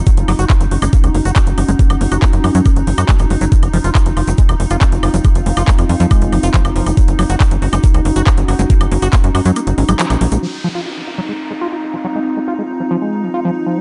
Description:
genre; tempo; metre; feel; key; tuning
psychedelic trance; 139 BPM; 4/4; straight; F phrygian; A4 = 440 Hz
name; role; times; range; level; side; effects
evolving wavetable pad; sustained chords; 0.0-13.8 s; Eb4; -25 LUFS; equal; chorus, built-in reverb, sidechain pumping
tight sequencer bass; bass; 0.0-10.4 s; Eb1 to Gb2; -18 LUFS; equal; none
warbly tape-like pad; texture; 0.0-13.8 s; C4 to Gb5; -26 LUFS; equal; chorus, built-in reverb, sidechain pumping
liquid acid bass; riff; 0.1-13.8 s; F3 to Gb4; -23 LUFS; equal; phaser, sidechain pumping, dub echo
electronic kick drum; drums; 0.1-9.2 s; none; -14 LUFS; equal; none
garage drum kit; drums; 0.1-10.4 s; handclaps, hi-hat, woodblock; -25 LUFS; equal; none
egg shaker; percussion; 0.1-10.4 s; none; -36 LUFS; equal; none
downlifter; sound effects; 10.4-13.8 s; none; -33 LUFS; equal; none
room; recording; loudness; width
light reverb; dark, warm production, nothing above 10.9 kHz; -14 LUFS; mono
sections
0.0-10.4 A section; 10.4-13.8 B section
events
kick drops out 9.6-10.4; band accent 10.0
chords
0.1 Gb5; 3.5 F5; 7.0 Gb5; 10.4 F5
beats
| 0.07 0.50 0.93 1.36 | 1.79 2.23 2.66 3.09 | 3.52 3.95 4.38 4.82 | 5.25 5.68 6.11 6.54 | 6.97 7.41 7.84 8.27 | 8.70 9.13 9.56 9.99 | 10.43 10.86 11.29 11.72 | 12.15 12.58 13.02 13.45

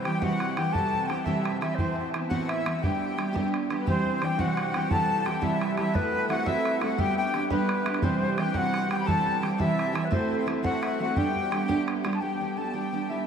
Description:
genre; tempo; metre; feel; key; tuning
celtic folk, Celtic jig; 115 BPM (dotted quarters); 6/8; straight; unclear; A4 = 438 Hz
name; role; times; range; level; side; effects
bright wooden flute; melody; 0.0-13.3 s; B4 to B5; -30 LUFS; left 2 dB; tape echo
accordion; second line; 0.0-13.3 s; B3 to A4; -33 LUFS; left 4 dB; tape echo
picked steel-string acoustic guitar; accompaniment; 0.0-13.3 s; A2 to G4; -28 LUFS; right 2 dB; analog chorus
bodhran; percussion; 0.1-12.2 s; none; -33 LUFS; right 2 dB; none
room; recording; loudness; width
wet huge ambient reverb, RT60 7.6 s; dreamy mix soaked in reverb; -24 LUFS; side -7 dB against mid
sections
0.0-3.9 A section; 3.9-12.2 A section; 12.2-13.3 B section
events
none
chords
0.0 C; 1.8 Amadd9; 2.8 G; 3.9 C; 5.9 F#m7b5; 7.0 G; 8.0 C; 10.1 F#m7b5; 11.2 G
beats
0.22 | 0.74 1.26 | 1.78 2.30 | 2.82 3.34 | 3.86 4.38 | 4.90 5.42 | 5.94 6.46 | 6.98 7.50 | 8.03 8.55 | 9.07 9.59 | 10.11 10.63 | 11.16 11.68 | 12.21 12.73 | 13.26

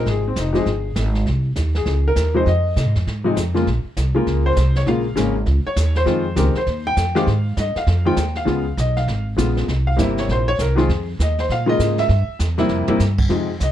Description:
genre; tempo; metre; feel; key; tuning
jazz piano trio; 199 BPM; 4/4; swing 62% on 8ths; F minor; A4 = 440 Hz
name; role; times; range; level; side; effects
warm upright piano; melody; 0.0-13.7 s; C3 to G5; -20 LUFS; left 2 dB; none
upright bass; bass; 0.0-13.7 s; F1 to C3; -19 LUFS; equal; none
jazz brush drum kit; drums; 0.1-13.7 s; brushed snare drum, crash cymbal, hi-hat, kick drum, snare drum, toms; -27 LUFS; right 2 dB; none
room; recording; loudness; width
little or no reverb; dark, warm production; -17 LUFS; side -11 dB against mid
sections
0.0-13.3 A section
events
upright piano solo 0.0-13.7; drum fill 12.7-13.0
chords
0.0 Fm7; 3.7 Bbm7; 6.1 Fm7; 8.5 Db7; 9.7 C7; 10.9 Ab5; 11.5 Bbm7; 12.1 C7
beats
| 0.06 0.36 0.66 0.96 | 1.26 1.56 1.86 2.16 | 2.46 2.76 3.06 3.36 | 3.66 3.96 4.26 4.56 | 4.86 5.16 5.46 5.76 | 6.07 6.37 6.67 6.97 | 7.27 7.57 7.87 8.17 | 8.47 8.78 9.08 9.38 | 9.68 9.98 10.28 10.59 | 10.89 11.19 11.49 11.79 | 12.09 12.40 12.70 13.00 | 13.30 13.60

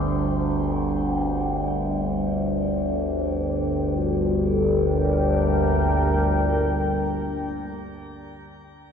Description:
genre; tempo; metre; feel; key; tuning
dark ambient drone; free time; none; none; G minor; A4 = 438 Hz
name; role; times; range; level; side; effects
deep dark ambient pad; sustained chords; 0.0-8.3 s; G3 to G5; -25 LUFS; equal; chorus, built-in reverb, shimmer reverb
overtone-sweeping drone; drone; 0.0-7.8 s; G1 to D2; -23 LUFS; equal; chorus, built-in reverb
room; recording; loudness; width
wet spring reverb, RT60 2.6 s; none; -21 LUFS; side -7 dB against mid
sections
0.0-4.0 A section; 4.0-8.1 B section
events
none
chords
0.0 G5; 4.0 Gm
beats
free time

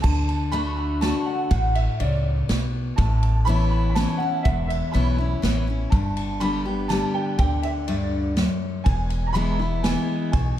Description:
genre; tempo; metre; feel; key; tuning
honky-tonk and classic country; 122 BPM; 3/4; straight; unclear; A4 = 440 Hz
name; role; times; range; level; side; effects
warm upright piano; second line; 0.0-10.6 s; D5 to B5; -29 LUFS; right 2 dB; ensemble chorus, analog delay
picked steel-string acoustic guitar; accompaniment; 0.0-10.6 s; E2 to G4; -25 LUFS; left 2 dB; none
upright bass; bass; 0.0-10.6 s; E1 to D2; -24 LUFS; equal; none
unplugged drum kit; drums; 0.0-10.4 s; crash cymbal, kick drum, ride cymbal, snare drum; -26 LUFS; right 1 dB; none
room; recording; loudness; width
moderate plate reverb, RT60 1.5 s, small room ambience; dreamy mix soaked in reverb; -20 LUFS; side -12 dB against mid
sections
0.0-10.6 A section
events
upright piano solo 0.0-10.6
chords
0.0 D; 3.0 Aadd9; 5.9 G; 8.9 E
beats
| 0.04 0.53 1.02 | 1.51 2.00 2.49 | 2.98 3.47 3.96 | 4.45 4.94 5.43 | 5.92 6.41 6.90 | 7.39 7.88 8.37 | 8.86 9.35 9.84 | 10.33

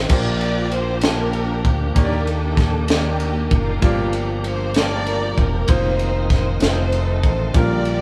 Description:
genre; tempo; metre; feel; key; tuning
slow gospel; 64 BPM (dotted quarters); 6/8; straight; Bb major; A4 = 439 Hz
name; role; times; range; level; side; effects
warm studio string section; melody; 0.0-8.0 s; Bb3 to D5; -28 LUFS; equal; none
clear concert grand piano; accompaniment; 0.0-8.0 s; G2 to A5; -28 LUFS; equal; none
tonewheel organ; sustained chords; 0.0-8.0 s; D3 to G4; -31 LUFS; equal; fast rotary speaker, chorus vibrato
fingered electric bass; bass; 0.0-8.0 s; E1 to Eb2; -24 LUFS; equal; none
tight funk drum kit; drums; 0.1-8.0 s; crash cymbal, kick drum, ride cymbal, snare drum; -23 LUFS; equal; none
room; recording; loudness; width
moderate stone room reverb, RT60 1.3 s; band playing live in one room; -19 LUFS; mono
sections
0.1-8.0 A section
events
none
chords
0.1 Bb6; 2.0 Ebmaj7; 3.8 Gm7; 5.7 F7sus4; 6.6 F7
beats
| 0.10 1.03 | 1.96 2.90 | 3.83 4.76 | 5.69 6.62 | 7.55

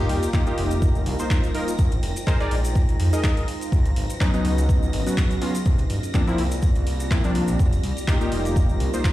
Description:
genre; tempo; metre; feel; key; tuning
deep house; 124 BPM; 4/4; swing 55% on 16ths; F dorian; A4 = 439 Hz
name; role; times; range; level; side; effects
warbly tape-like pad; sustained chords; 0.3-9.1 s; Gb3 to D5; -33 LUFS; right 1 dB; chorus, built-in reverb, phaser, sidechain pumping
warm analog keys; stabs; 0.0-9.1 s; F3 to Eb5; -26 LUFS; equal; chorus, vintage 12-bit sampler grit, sidechain pumping, ping-pong delay
smooth synth bass; bass; 0.0-8.9 s; F1 to F2; -24 LUFS; equal; sidechain pumping
sub drop; sound effects; 0.0-1.8 s; none; -31 LUFS; equal; none
granular cloud pad; texture; 0.2-9.1 s; C4 to Bb5; -36 LUFS; right 1 dB; built-in reverb, sidechain pumping
string machine, violins; texture; 0.0-9.1 s; Bb6; -40 LUFS; equal; ensemble chorus, sidechain pumping
deep house drum kit; drums; 0.1-9.1 s; handclaps, hi-hat; -33 LUFS; equal; studio reverb
maracas; percussion; 0.2-9.1 s; none; -39 LUFS; left 1 dB; none
electronic kick drum; drums; 0.3-9.1 s; none; -20 LUFS; equal; studio reverb
room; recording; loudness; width
little or no reverb; played on a big sound system in a bare room, stone room reverb; -19 LUFS; side -15 dB against mid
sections
0.0-9.1 A section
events
impact 0.0-1.8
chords
0.0 F9sus4; 1.8 Bb9sus4; 3.5 Db9sus4; 5.7 C9sus4; 7.6 F9sus4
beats
0.34 0.82 1.30 | 1.79 2.27 2.75 3.24 | 3.72 4.21 4.69 5.17 | 5.66 6.14 6.63 7.11 | 7.59 8.08 8.56 9.04

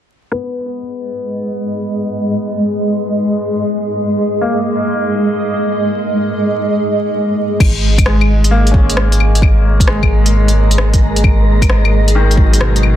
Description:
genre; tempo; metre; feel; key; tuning
future garage; 132 BPM; 4/4; swing 67% on 16ths; unclear; A4 = 440 Hz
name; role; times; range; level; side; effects
bright upright piano; accompaniment; 0.3-13.0 s; B2 to C#4; -22 LUFS; left 2 dB; sidechain pumping, low-pass filter, analog delay
granular cloud pad; sustained chords; 1.1-13.0 s; G#3 to D#5; -17 LUFS; right 1 dB; built-in reverb, sidechain pumping
warm sub bass; bass; 7.6-13.0 s; G#1; -12 LUFS; equal; sidechain pumping
deep house drum kit; drums; 7.6-13.0 s; claves, crash cymbal, hi-hat, rim click; -19 LUFS; left 2 dB; small room ambience
electronic kick drum; drums; 7.6-12.5 s; none; -13 LUFS; equal; small room ambience
wind-like tuned noise texture; texture; 9.4-13.0 s; A#3 to A#5; -25 LUFS; right 2 dB; built-in reverb
room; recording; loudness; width
light reverb, digital ambience; dense, heavily limited modern master, vinyl crackle, low-pass filter; -11 LUFS; side -11 dB against mid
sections
0.3-7.6 A section; 7.6-13.0 B section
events
filter sweep on upright piano 0.3-7.6; filter sweep 0.3-7.6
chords
0.3 G#m; 7.6 G#5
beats
| 0.33 0.79 1.24 1.69 | 2.15 2.60 3.06 3.51 | 3.97 4.42 4.88 5.33 | 5.79 6.24 6.69 7.15 | 7.60 8.06 8.51 8.97 | 9.42 9.88 10.33 10.79 | 11.24 11.69 12.15 12.60

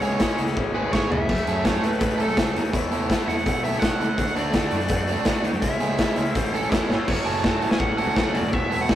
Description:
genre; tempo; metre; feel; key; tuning
indie rock; 166 BPM; 4/4; straight; unclear; A4 = 440 Hz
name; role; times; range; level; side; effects
bluesy overdriven lead guitar; melody; 0.0-8.9 s; A4 to A5; -28 LUFS; right 2 dB; distortion
biting overdriven guitar; riff; 0.0-8.9 s; E3 to A4; -29 LUFS; right 4 dB; none
raw garage guitar; riff; 0.0-8.9 s; F#2 to F#4; -29 LUFS; left 4 dB; overdrive
fuzz picked electric bass; bass; 0.0-8.9 s; E1 to A2; -30 LUFS; equal; overdrive
raw garage drum kit; drums; 0.0-8.9 s; crash cymbal, hi-hat, kick drum, snare drum, toms; -23 LUFS; equal; none
warm trumpet; second line; 6.7-8.9 s; A3 to F#4; -40 LUFS; right 2 dB; none
room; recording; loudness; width
light reverb; rough rehearsal-room recording, tube saturation; -20 LUFS; side -12 dB against mid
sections
0.0-7.1 A section; 7.1-8.9 B section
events
lead electric guitar solo 0.0-7.1; drum fill 0.6-1.3, 6.9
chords
0.0 C#m; 1.3 F#m; 2.7 Esus4; 4.2 D; 5.6 C#m; 6.4 A; 7.1 F#m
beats
0.20 0.56 0.92 | 1.29 1.65 2.01 2.37 | 2.73 3.10 3.46 3.82 | 4.18 4.54 4.90 5.27 | 5.63 5.99 6.35 6.71 | 7.08 7.44 7.80 8.16 | 8.52 8.88

